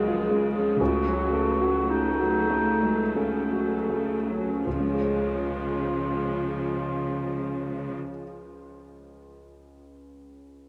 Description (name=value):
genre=classical, romantic movement for piano and orchestra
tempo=38-62 BPM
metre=3/4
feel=rubato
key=Db major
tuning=A4 = 443 Hz
part: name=clear grand piano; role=melody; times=0.0-10.7 s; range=Db2 to Db5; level=-31 LUFS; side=equal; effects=none
part: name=warm clarinet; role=second line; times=0.0-7.9 s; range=Db4 to Ab4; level=-31 LUFS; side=equal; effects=none
part: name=rich chamber viola section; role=accompaniment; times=0.0-7.9 s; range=Db3 to A3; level=-34 LUFS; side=equal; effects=none
part: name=clear chamber cello section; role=bass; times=0.8-7.9 s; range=Db3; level=-35 LUFS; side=equal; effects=none
room=wet cathedral reverb, RT60 4.9 s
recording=in a vast, echoing space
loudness=-26 LUFS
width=mono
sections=0.0-4.6 A section; 4.6-9.0 B section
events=slowing down 0.0-4.6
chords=0.0 Db; 0.8 Gbm/Db; 4.6 Db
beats=| 0.79 1.89 3.15 | 4.64 6.09 7.57